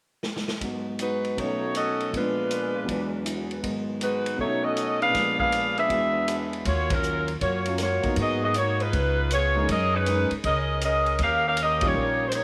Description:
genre	jazz, big band swing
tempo	159 BPM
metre	4/4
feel	swing 66% on 8ths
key	Eb minor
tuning	A4 = 440 Hz
part	swinging big-band drum kit	drums	0.2-12.4 s	hi-hat, kick drum, ride cymbal, snare drum	-36 LUFS	equal	none
part	clear concert grand piano	accompaniment	0.6-12.3 s	E2 to B4	-33 LUFS	equal	none
part	mellow saxophone section	melody	1.0-12.4 s	Gb3 to F5	-26 LUFS	equal	tape echo
part	upright bass	bass	6.7-12.4 s	Bb1 to Ab2	-30 LUFS	equal	none
room	light reverb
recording	none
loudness	-25 LUFS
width	mono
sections	0.6-6.7 A section; 6.7-12.4 B section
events	drum fill 0.2-0.6; band accent 6.8, 11.8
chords	0.0 N.C.; 0.6 Abm7; 1.4 B9; 2.1 Bb7b9; 2.9 E9; 3.6 Abm7; 4.4 B9; 5.1 Bb7b9; 5.9 E9; 6.7 Ebm9; 8.2 Abm7; 8.9 Db9; 9.7 Gb69; 11.2 Eb7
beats	0.23 | 0.60 0.98 1.36 1.74 | 2.12 2.50 2.88 3.25 | 3.63 4.01 4.39 4.77 | 5.14 5.52 5.90 6.28 | 6.66 7.04 7.41 7.79 | 8.17 8.55 8.92 9.30 | 9.68 10.06 10.44 10.81 | 11.19 11.57 11.95 12.32

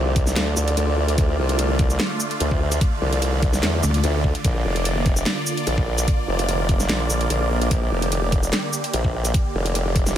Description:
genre	heavy wobble dubstep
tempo	147 BPM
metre	4/4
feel	swing 53% on 16ths, half-time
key	unclear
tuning	A4 = 440 Hz
part	supersaw chords	sustained chords	0.0-10.2 s	D3 to D5	-26 LUFS	right 2 dB	phaser, sidechain pumping
part	formant-sweep wobble bass	bass	0.0-10.1 s	F1 to E2	-21 LUFS	equal	chorus, overdrive
part	dubstep drum kit	drums	0.2-10.1 s	handclaps, hi-hat, shaker, snare drum	-25 LUFS	equal	none
part	electronic kick drum	drums	0.2-10.0 s	none	-21 LUFS	equal	none
part	pulsing pluck wobble bass	bass	3.8-4.0 s	D2	-19 LUFS	equal	chorus, overdrive
room	digital ambience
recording	none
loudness	-19 LUFS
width	side -11 dB against mid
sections	0.0-10.2 A section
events	none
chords	0.0 Dm; 4.4 Bb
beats	0.36 0.77 | 1.18 1.59 2.00 2.40 | 2.81 3.22 3.63 4.04 | 4.45 4.85 5.26 5.67 | 6.08 6.49 6.89 7.30 | 7.71 8.12 8.53 8.94 | 9.34 9.75 10.16

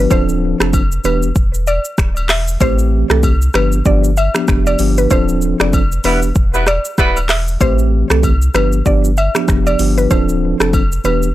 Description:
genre	afrobeats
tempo	96 BPM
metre	4/4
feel	swing 58% on 16ths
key	unclear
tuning	A4 = 438 Hz
part	mallet-like synth pluck	melody	0.0-11.2 s	A4 to E5	-20 LUFS	equal	chorus, analog delay
part	mellow tine electric piano	accompaniment	0.0-11.3 s	E3 to A4	-18 LUFS	equal	medium stereo tremolo
part	warm sub bass	bass	0.0-11.3 s	D1 to C2	-16 LUFS	equal	none
part	afro-pop drum kit	drums	0.1-11.3 s	finger snaps, handclaps, hi-hat, kick drum, rim click, shaker	-16 LUFS	equal	none
part	agogo bells	percussion	0.1-11.2 s	none	-27 LUFS	left 3 dB	none
part	mellow horn section	second line	6.0-7.2 s	G3 to B4	-17 LUFS	right 1 dB	none
room	digital ambience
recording	dry, gritty hardware recording, transformer saturation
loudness	-12 LUFS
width	side -15 dB against mid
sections	0.0-11.3 A section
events	band accent 5.1-7.6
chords	0.1 Dm7; 1.0 Em7; 2.6 Am7; 3.5 G7; 5.1 Dm7; 6.0 Em7; 7.6 Am7; 8.5 G7; 10.1 Dm7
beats	| 0.11 0.73 1.36 1.98 | 2.61 3.23 3.86 4.48 | 5.11 5.73 6.36 6.98 | 7.61 8.23 8.86 9.48 | 10.11 10.73

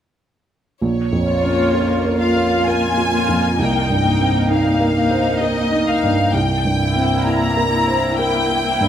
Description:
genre	cinematic, emotional film score for orchestra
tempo	65 BPM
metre	3/4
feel	rubato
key	Bb dorian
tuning	A4 = 441 Hz
part	rich studio violin section	melody	0.8-8.9 s	Db5 to Bb5	-20 LUFS	left 2 dB	none
part	clear grand piano	accompaniment	0.8-8.9 s	Bb1 to Db5	-18 LUFS	right 2 dB	none
part	rich studio viola section	accompaniment	1.3-8.9 s	Bb3 to F4	-20 LUFS	left 2 dB	none
room	moderate scoring stage reverb, RT60 1.6 s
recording	close, detailed microphones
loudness	-15 LUFS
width	side -10 dB against mid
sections	0.8-8.9 A section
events	none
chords	0.8 Bbm; 3.6 Cm7; 6.3 C7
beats	| 0.82 1.75 2.67 | 3.59 4.51 5.43 | 6.35 7.27 8.19

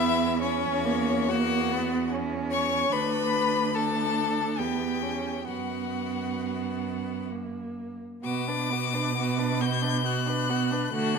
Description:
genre	classical, slow romantic movement for string quartet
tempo	64-78 BPM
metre	3/4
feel	rubato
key	B minor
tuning	A4 = 445 Hz
part	clear violin	melody	0.0-11.2 s	C#5 to G6	-30 LUFS	left 9 dB	none
part	rich violin	second line	0.0-11.2 s	C#4 to C#5	-32 LUFS	left 3 dB	none
part	rich viola	accompaniment	0.0-11.2 s	A3 to D4	-30 LUFS	right 3 dB	none
part	rich cello	bass	0.0-11.2 s	D2 to D3	-31 LUFS	right 5 dB	none
room	moderate recital hall reverb, RT60 1.7 s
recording	none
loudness	-25 LUFS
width	side -5 dB against mid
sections	0.0-8.2 A section; 8.2-11.2 B section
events	none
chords	0.4 F#7/E; 2.9 Bm/D; 4.6 Em; 5.5 B5/F#; 7.3 F#; 8.2 Bm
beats	| 0.42 1.29 2.11 | 2.93 3.76 4.60 | 5.49 6.40 7.31 | 8.24 9.16 10.05 | 10.93

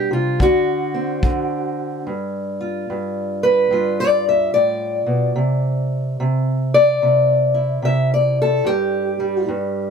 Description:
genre	acoustic country blues, solo or duo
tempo	73 BPM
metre	4/4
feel	swing 64% on 8ths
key	G mixolydian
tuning	A4 = 440 Hz
part	fingerpicked steel-string acoustic guitar	melody	0.0-9.9 s	G2 to E5	-16 LUFS	equal	none
part	kick drum	drums	0.4-1.5 s	none	-19 LUFS	left 1 dB	none
room	moderate booth ambience, RT60 0.2 s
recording	none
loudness	-16 LUFS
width	side -6 dB against mid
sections	0.0-2.1 A section; 2.1-9.9 B section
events	steel-string acoustic guitar solo 2.1-9.9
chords	0.4 D7; 2.1 G7; 5.4 C; 8.7 N.C.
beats	0.40 1.23 | 2.06 2.88 3.71 4.54 | 5.37 6.19 7.01 7.84 | 8.66 9.48

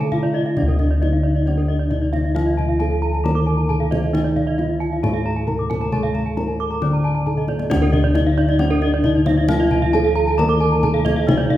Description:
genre	Balinese gamelan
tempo	134 BPM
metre	4/4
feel	straight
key	D pelog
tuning	A4 = 440 Hz
part	gamelan-type bronze metallophone	melody	0.0-11.6 s	D4 to D5	-22 LUFS	equal	none
part	gamelan-type bronze metallophone	accompaniment	0.0-11.6 s	D3 to D4	-28 LUFS	right 1 dB	none
part	gamelan-type bronze metallophone	arpeggios	0.0-11.5 s	Bb4-40c to D6	-28 LUFS	right 4 dB	none
part	gamelan-type bossed gongs	bass	0.0-11.6 s	D2 to A4-45c	-20 LUFS	equal	none
part	kendang	percussion	0.0-11.6 s	none	-26 LUFS	left 2 dB	none
part	gamelan-type bronze metallophone	arpeggios	0.1-11.6 s	D5 to D6	-28 LUFS	left 4 dB	none
room	wet recital hall reverb, RT60 1.7 s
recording	heard from further back in the room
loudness	-16 LUFS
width	side -13 dB against mid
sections	0.6-11.6 A section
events	drum fill 7.3-7.7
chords	none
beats	0.12 | 0.57 1.02 1.46 1.91 | 2.35 2.80 3.25 3.69 | 4.14 4.58 5.03 5.48 | 5.92 6.37 6.82 7.26 | 7.71 8.15 8.60 9.04 | 9.49 9.94 10.38 10.83 | 11.28

